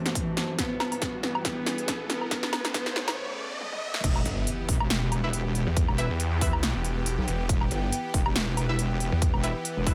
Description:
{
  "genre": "heavy wobble dubstep",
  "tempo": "139 BPM",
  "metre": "4/4",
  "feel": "swing 55% on 16ths, half-time",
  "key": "E minor",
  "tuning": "A4 = 440 Hz",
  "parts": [
    { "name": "dark cello", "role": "melody", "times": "0.0-3.2 s", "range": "E3 to B3", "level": "-36 LUFS", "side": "equal", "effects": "delay" },
    { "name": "supersaw pad", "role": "sustained chords", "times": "0.0-9.9 s", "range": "F#2 to G4", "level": "-39 LUFS", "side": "equal", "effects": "sidechain pumping" },
    { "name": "riser and impact", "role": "sound effects", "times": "0.0-5.8 s", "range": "none", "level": "-39 LUFS", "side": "equal", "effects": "none" },
    { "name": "warbly tape-like pad", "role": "texture", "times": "0.0-9.9 s", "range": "G3 to C6", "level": "-42 LUFS", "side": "equal", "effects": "chorus, built-in reverb, phaser, sidechain pumping" },
    { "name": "big-room dance drum kit", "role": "drums", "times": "0.1-9.9 s", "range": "crash cymbal, hi-hat, snare drum, toms, woodblock", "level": "-32 LUFS", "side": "equal", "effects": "none" },
    { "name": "electronic kick drum", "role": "drums", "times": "0.2-9.9 s", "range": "none", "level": "-31 LUFS", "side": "equal", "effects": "none" },
    { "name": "wobble bass", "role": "bass", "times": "4.0-9.9 s", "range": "E1 to B1", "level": "-30 LUFS", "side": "equal", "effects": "chorus, overdrive" },
    { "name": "snarling distorted saw bass", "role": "bass", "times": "4.3-9.3 s", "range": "E1 to E2", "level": "-30 LUFS", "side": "equal", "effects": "distortion, overdrive" },
    { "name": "orchestra-hit-like synth stab", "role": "stabs", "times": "5.2-9.9 s", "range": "E4 to E5", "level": "-37 LUFS", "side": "equal", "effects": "built-in reverb, delay" }
  ],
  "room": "light reverb",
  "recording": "high-pass filter",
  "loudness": "-28 LUFS",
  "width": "mono",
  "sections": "0.0-4.0 A section; 4.0-9.9 B section",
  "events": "build-up 0.0-4.0; drum fill 0.0-3.2, 3.6-4.0; riser 0.0-4.0; filter sweep on supersaw synth 0.0-4.0; break 3.2-4.0; drop 4.0-9.9; impact 4.0-5.8",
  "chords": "0.0 F#dim; 0.6 Em/G; 2.3 Aadd9; 4.0 Em",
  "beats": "0.15 | 0.59 1.02 1.45 1.88 | 2.31 2.74 3.18 3.61 | 4.04 4.47 4.90 5.33 | 5.76 6.20 6.63 7.06 | 7.49 7.92 8.36 8.79 | 9.22 9.65"
}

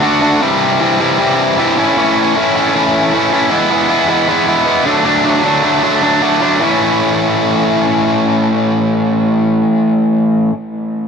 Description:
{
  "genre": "punk",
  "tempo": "155 BPM",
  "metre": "4/4",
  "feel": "straight",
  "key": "A major",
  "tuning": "A4 = 440 Hz",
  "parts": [
    { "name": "distorted electric guitar", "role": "solo", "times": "0.0-10.5 s", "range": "A2 to F#4", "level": "-11 LUFS", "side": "equal", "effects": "overdrive, tape echo" }
  ],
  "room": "moderate studio reverb, RT60 0.5 s",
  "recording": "none",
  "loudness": "-11 LUFS",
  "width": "side -6 dB against mid",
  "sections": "0.0-3.5 A section; 3.5-6.6 B section; 6.6-9.7 C section",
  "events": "none",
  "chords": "0.4 C; 1.8 A; 3.5 E; 4.9 D; 6.6 A",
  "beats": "0.02 | 0.41 0.80 1.19 1.57 | 1.96 2.35 2.74 3.12 | 3.51 3.90 4.29 4.68 | 5.06 5.45 5.84 6.23 | 6.62 7.00 7.39 7.78 | 8.17 8.56 8.95 9.34"
}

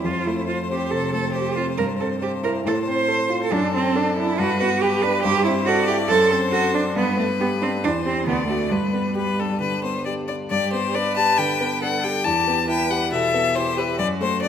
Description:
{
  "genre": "quick classical-period movement for piano trio",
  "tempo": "138 BPM",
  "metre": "4/4",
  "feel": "straight",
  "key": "G major from 3.5 s",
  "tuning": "A4 = 444 Hz",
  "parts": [
    { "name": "clear violin", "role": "melody", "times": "0.0-14.5 s", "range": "A4 to A5", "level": "-24 LUFS", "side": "left 6 dB", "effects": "none" },
    { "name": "rich cello", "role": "second line", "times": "0.0-14.5 s", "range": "G3 to C5", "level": "-23 LUFS", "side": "right 4 dB", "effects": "none" },
    { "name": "warm grand piano", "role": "accompaniment", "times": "0.0-14.5 s", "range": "D2 to C5", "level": "-24 LUFS", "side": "equal", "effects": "none" }
  ],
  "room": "moderate scoring stage reverb, RT60 2.1 s",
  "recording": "none",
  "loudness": "-19 LUFS",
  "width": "side -8 dB against mid",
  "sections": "0.0-10.5 A section; 10.5-14.5 B section",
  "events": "none",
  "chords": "0.1 F; 1.8 C/G; 2.7 F/A; 3.5 D7/F#; 4.4 G; 5.2 Am7/G; 6.1 D7/F#; 7.0 G; 7.8 C/E; 8.3 D; 8.7 G; 12.2 Em; 14.0 D/F#",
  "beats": "| 0.05 0.49 0.93 1.36 | 1.79 2.22 2.66 3.09 | 3.53 3.96 4.39 4.82 | 5.24 5.67 6.10 6.54 | 6.97 7.40 7.84 8.28 | 8.72 9.16 9.61 10.05 | 10.50 10.94 11.38 11.81 | 12.25 12.68 13.12 13.55 | 13.98 14.41"
}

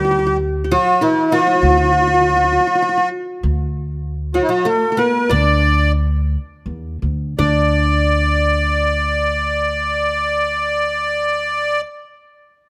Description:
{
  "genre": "arabic",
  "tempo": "79-99 BPM",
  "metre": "3/4",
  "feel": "straight",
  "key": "D maqam huzam",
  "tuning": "A4 = 441 Hz",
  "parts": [
    { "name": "accordion", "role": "melody", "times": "0.0-11.8 s", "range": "E4-50c to D5", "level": "-18 LUFS", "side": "equal", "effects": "light tremolo tuning" },
    { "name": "oud", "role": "second line", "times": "0.0-11.8 s", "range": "E3-50c to D4", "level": "-26 LUFS", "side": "equal", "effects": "none" },
    { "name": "qanun", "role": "second line", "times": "0.0-11.8 s", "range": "E4-50c to D5", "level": "-25 LUFS", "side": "equal", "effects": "none" },
    { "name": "upright bass", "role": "bass", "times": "0.0-11.8 s", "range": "D2 to E2-50c", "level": "-22 LUFS", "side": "equal", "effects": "none" }
  ],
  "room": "light reverb",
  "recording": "close, detailed microphones",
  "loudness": "-17 LUFS",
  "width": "mono",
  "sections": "0.0-7.4 A section; 7.4-11.9 B section",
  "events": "slowing down 3.4-7.4",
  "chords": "none",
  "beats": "0.41 1.02 | 1.62 2.22 2.83 | 3.43 4.04 4.66 | 5.30 5.96 6.65 | 7.39 8.14 8.90 | 9.66 10.41 11.17"
}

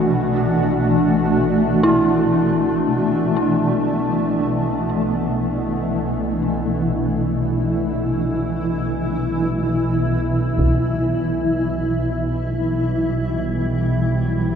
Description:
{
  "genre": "dark ambient drone",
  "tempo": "free time",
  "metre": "none",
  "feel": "none",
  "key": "unclear",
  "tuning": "A4 = 440 Hz",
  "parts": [
    { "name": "granular cloud pad", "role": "sustained chords", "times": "0.0-14.6 s", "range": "B2 to C5", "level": "-19 LUFS", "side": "equal", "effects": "built-in reverb" },
    { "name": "dark detuned synth bell", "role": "arpeggios", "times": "0.0-10.6 s", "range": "E4 to F#4", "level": "-24 LUFS", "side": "right 1 dB", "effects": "chorus, ping-pong delay" },
    { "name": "analog drone", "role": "drone", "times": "0.0-14.6 s", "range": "B1 to B2", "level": "-24 LUFS", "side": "equal", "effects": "chorus" },
    { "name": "taiko ensemble", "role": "percussion", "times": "10.6-10.8 s", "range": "none", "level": "-25 LUFS", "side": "equal", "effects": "none" }
  ],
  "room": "wet cathedral reverb, RT60 5.7 s",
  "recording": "none",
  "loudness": "-17 LUFS",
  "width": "side -7 dB against mid",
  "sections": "0.0-14.6 A section",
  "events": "fade-in on synth drone 0.0-14.6",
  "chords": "0.0 Bm; 10.6 C/B",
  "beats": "free time"
}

